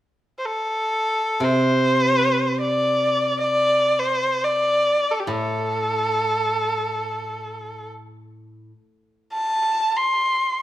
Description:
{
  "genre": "chinese traditional, Chinese chamber ensemble",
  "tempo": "free time",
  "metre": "none",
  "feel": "none",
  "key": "unclear",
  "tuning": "A4 = 440 Hz",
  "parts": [
    { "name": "clear erhu", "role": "melody", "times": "0.4-10.6 s", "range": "G4 to C6", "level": "-20 LUFS", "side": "equal", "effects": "none" },
    { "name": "steel-string zither", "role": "accompaniment", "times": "1.4-8.7 s", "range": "A2 to C3", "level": "-26 LUFS", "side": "equal", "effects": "none" }
  ],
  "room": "moderate recital hall reverb, RT60 1.3 s",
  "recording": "minimal, uncompressed stereo recording",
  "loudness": "-19 LUFS",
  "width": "side -13 dB against mid",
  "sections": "0.0-10.6 A section",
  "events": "none",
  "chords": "none"
}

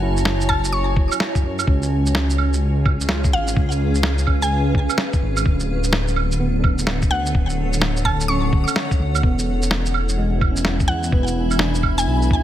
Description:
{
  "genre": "future garage",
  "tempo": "127 BPM",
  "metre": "4/4",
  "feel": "swing 64% on 16ths",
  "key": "unclear",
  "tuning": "A4 = 440 Hz",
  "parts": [
    { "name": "tine electric piano", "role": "accompaniment", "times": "0.0-12.4 s", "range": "G#3 to E#4", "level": "-28 LUFS", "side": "right 3 dB", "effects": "lush chorus, sidechain pumping, digital delay" },
    { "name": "granular cloud pad", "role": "sustained chords", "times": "0.0-12.4 s", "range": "D3 to B5", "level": "-27 LUFS", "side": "equal", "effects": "built-in reverb, sidechain pumping" },
    { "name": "dark detuned saw bass", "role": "bass", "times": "0.0-12.4 s", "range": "D1 to F#2", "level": "-21 LUFS", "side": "equal", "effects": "none" },
    { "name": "electronic shaker, snare drum and claves", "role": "drums", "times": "0.2-12.3 s", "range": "none", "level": "-23 LUFS", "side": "right 2 dB", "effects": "none" },
    { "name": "mallet-like synth pluck", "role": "melody", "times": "0.5-12.4 s", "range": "E#5 to C#6", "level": "-25 LUFS", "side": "equal", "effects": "chorus, digital delay" },
    { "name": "electronic kick drum", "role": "drums", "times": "0.5-12.4 s", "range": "none", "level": "-19 LUFS", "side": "equal", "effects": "none" }
  ],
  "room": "light reverb",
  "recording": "none",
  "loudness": "-17 LUFS",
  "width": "side -12 dB against mid",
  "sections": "0.0-12.4 A section",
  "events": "none",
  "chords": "0.0 F#madd9; 1.7 C#7; 5.5 Dmaj7; 9.2 E"
}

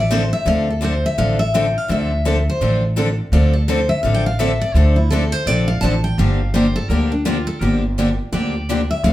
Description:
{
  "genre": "acoustic string swing (jazz manouche)",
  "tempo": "168 BPM",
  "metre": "4/4",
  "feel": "swing 62% on 8ths",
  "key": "D minor",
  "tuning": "A4 = 441 Hz",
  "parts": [
    { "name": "picked steel-string acoustic guitar", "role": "melody", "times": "0.0-9.1 s", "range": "D4 to A5", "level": "-21 LUFS", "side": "left 1 dB", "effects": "none" },
    { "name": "upright bass", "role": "bass", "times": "0.0-9.1 s", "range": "G1 to D2", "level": "-18 LUFS", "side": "equal", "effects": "none" },
    { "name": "picked steel-string acoustic guitar", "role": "accompaniment", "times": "0.1-9.1 s", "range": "D3 to A4", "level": "-23 LUFS", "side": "left 3 dB", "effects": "none" },
    { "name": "picked steel-string acoustic guitar", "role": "accompaniment", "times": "0.1-9.1 s", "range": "D3 to A4", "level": "-25 LUFS", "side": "right 3 dB", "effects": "none" }
  ],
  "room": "wet studio reverb, RT60 0.7 s",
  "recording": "heard from further back in the room",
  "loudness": "-15 LUFS",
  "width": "side -14 dB against mid",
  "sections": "0.5-9.1 A section",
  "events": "steel-string acoustic guitar solo 0.0-9.1",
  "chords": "0.5 Dm7; 6.2 Gm7"
}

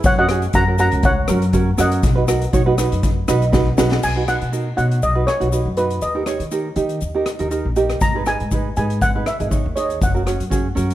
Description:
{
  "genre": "calypso",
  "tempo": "120 BPM",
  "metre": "4/4",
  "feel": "swing 54% on 16ths",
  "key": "B major",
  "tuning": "A4 = 440 Hz",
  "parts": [
    { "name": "tenor ukulele", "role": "accompaniment", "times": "0.0-10.9 s", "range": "C#4 to D#5", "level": "-22 LUFS", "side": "right 4 dB", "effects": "none" },
    { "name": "upright bass", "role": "bass", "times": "0.0-10.9 s", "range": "F#1 to D#3", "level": "-21 LUFS", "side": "left 1 dB", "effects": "none" },
    { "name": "street-band drum kit", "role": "drums", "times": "0.0-10.9 s", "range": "crash cymbal, hi-hat, kick drum, rim click, snare drum", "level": "-21 LUFS", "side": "left 1 dB", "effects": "none" },
    { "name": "tube shaker", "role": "percussion", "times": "0.0-10.9 s", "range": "none", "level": "-35 LUFS", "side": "left 7 dB", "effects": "none" },
    { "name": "steel pan", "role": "melody", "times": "0.1-10.7 s", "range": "B4 to A#5", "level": "-21 LUFS", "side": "left 1 dB", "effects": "none" }
  ],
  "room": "light reverb",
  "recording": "none",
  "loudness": "-16 LUFS",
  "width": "side -14 dB against mid",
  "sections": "0.0-4.0 A section; 4.0-10.9 B section",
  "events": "ukulele fill 3.0-4.0; drum fill 3.5-4.0",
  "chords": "0.0 F#; 2.0 B; 6.0 D#; 8.0 G#m; 10.0 F#"
}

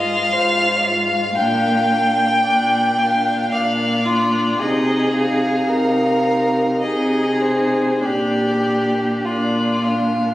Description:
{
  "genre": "classical, slow romantic movement for string quartet",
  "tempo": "49-58 BPM",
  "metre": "3/4",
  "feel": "rubato",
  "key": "unclear",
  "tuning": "A4 = 439 Hz",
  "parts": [
    { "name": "rich violin", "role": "melody", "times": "0.0-10.3 s", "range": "C5 to F5", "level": "-24 LUFS", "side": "left 2 dB", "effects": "none" },
    { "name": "dark violin", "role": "second line", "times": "0.0-10.3 s", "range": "F4 to G5", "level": "-18 LUFS", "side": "equal", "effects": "none" },
    { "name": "warm viola", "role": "accompaniment", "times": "0.0-10.3 s", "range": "D4 to F4", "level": "-26 LUFS", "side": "equal", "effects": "none" },
    { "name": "rich cello", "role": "bass", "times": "0.0-10.3 s", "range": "Ab2 to C3", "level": "-21 LUFS", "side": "equal", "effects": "none" }
  ],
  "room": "wet recital hall reverb, RT60 1.8 s",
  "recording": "recorded on a phone in the room, studio reverb, compression",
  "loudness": "-15 LUFS",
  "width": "side -14 dB against mid",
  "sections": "0.0-10.3 A section",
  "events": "none",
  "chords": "0.0 Fm7/Ab; 1.4 Bb; 4.6 Ab/C; 8.0 Bb"
}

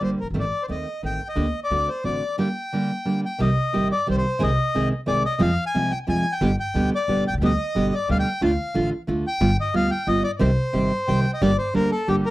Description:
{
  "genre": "tango",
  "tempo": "180 BPM",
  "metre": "3/4",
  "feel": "rubato",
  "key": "G harmonic minor, C harmonic minor from 3.4 s",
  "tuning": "A4 = 437 Hz",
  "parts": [
    { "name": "bandoneon", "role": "melody", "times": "0.0-12.3 s", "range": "G4 to Ab5", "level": "-25 LUFS", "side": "left 2 dB", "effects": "slapback echo" },
    { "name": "nylon-string guitar", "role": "accompaniment", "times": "0.0-12.3 s", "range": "B2 to Ab4", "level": "-22 LUFS", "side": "right 2 dB", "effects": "none" },
    { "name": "upright bass", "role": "bass", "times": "0.0-12.2 s", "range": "F#1 to F2", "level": "-26 LUFS", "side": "equal", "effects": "none" }
  ],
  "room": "light reverb",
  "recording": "dry, close 1970s-style studio recording",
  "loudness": "-20 LUFS",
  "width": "side -17 dB against mid",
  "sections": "0.0-3.4 A section; 3.4-11.4 B section",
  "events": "none",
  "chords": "0.3 Adim; 1.4 Gm/D; 1.7 D7; 2.4 Gm; 3.4 Cm; 4.4 Ab/C; 5.4 Fm; 6.4 G; 8.4 Dm; 9.4 G7; 10.4 Cm; 11.4 Gm"
}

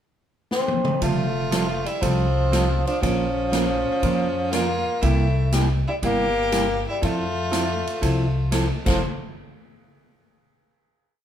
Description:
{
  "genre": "country, western swing",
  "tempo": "120 BPM",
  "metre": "4/4",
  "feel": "swing 69% on 8ths",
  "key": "F major",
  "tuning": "A4 = 445 Hz",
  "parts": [
    { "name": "warm bassoon", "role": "melody", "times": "0.5-9.0 s", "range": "F3 to C4", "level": "-25 LUFS", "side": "left 1 dB", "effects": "none" },
    { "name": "swinging big-band drum kit", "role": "drums", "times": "0.5-8.9 s", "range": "crash cymbal, hi-hat, kick drum, ride cymbal, snare drum, toms", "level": "-28 LUFS", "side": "equal", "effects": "none" },
    { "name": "clear fiddle", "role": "second line", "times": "1.0-9.0 s", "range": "C4 to C5", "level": "-30 LUFS", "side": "equal", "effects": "none" },
    { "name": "vintage hollow-body jazz guitar", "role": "accompaniment", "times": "1.0-9.0 s", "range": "C3 to Bb4", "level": "-26 LUFS", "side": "right 2 dB", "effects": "none" },
    { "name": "upright bass", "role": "bass", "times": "1.0-9.0 s", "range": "F1 to F2", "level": "-24 LUFS", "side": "equal", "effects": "none" }
  ],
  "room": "light reverb",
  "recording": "band playing live in one room",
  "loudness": "-20 LUFS",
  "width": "side -10 dB against mid",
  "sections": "0.0-1.0 pickup bar; 1.0-9.0 A section; 9.0-11.0 final hit",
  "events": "drum fill 0.5-1.0",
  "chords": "0.0 N.C.; 1.0 Fadd9; 3.0 Bbm; 5.0 C7; 7.0 Fmaj7; 9.0 N.C."
}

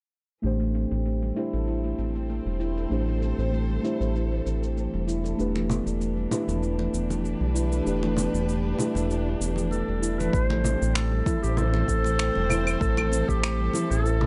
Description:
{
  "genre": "organic downtempo",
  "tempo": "97 BPM",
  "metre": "4/4",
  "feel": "swing 54% on 16ths",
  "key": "A minor",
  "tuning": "A4 = 444 Hz",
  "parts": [
    { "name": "muted felt-like synth keys", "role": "accompaniment", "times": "0.4-10.4 s", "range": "A3 to C5", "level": "-34 LUFS", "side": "equal", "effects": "chorus, sidechain pumping, tape echo" },
    { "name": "dark chamber string section", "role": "sustained chords", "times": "0.4-14.3 s", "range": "E3 to C5", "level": "-37 LUFS", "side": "equal", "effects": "sidechain pumping" },
    { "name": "handpan", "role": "arpeggios", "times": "0.4-14.3 s", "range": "G3 to A4", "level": "-33 LUFS", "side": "equal", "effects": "low-pass filter, tape echo" },
    { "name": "round analog bass", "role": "bass", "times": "0.4-14.3 s", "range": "E1 to B1", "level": "-29 LUFS", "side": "equal", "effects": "tube saturation, sidechain pumping" },
    { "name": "electronic cabasa, finger snaps and claves", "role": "drums", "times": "0.4-14.2 s", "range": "none", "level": "-35 LUFS", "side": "equal", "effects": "overdrive, low-pass filter on perc, studio reverb, low-pass filter on snare" },
    { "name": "congas", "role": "percussion", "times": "5.6-14.3 s", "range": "none", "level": "-34 LUFS", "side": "equal", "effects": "none" },
    { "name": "warm clarinet", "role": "melody", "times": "9.7-14.3 s", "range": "G4 to C5", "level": "-32 LUFS", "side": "equal", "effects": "analog delay" },
    { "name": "electronic kick drum", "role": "drums", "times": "10.3-13.4 s", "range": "none", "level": "-30 LUFS", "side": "equal", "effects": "overdrive, studio reverb" }
  ],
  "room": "little or no reverb",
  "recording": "dry, gritty hardware recording, nothing above 10.8 kHz",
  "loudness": "-26 LUFS",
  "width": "mono",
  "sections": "0.4-10.3 A section; 10.3-14.3 B section",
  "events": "none",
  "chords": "0.4 Am; 5.4 Em7; 10.3 Am"
}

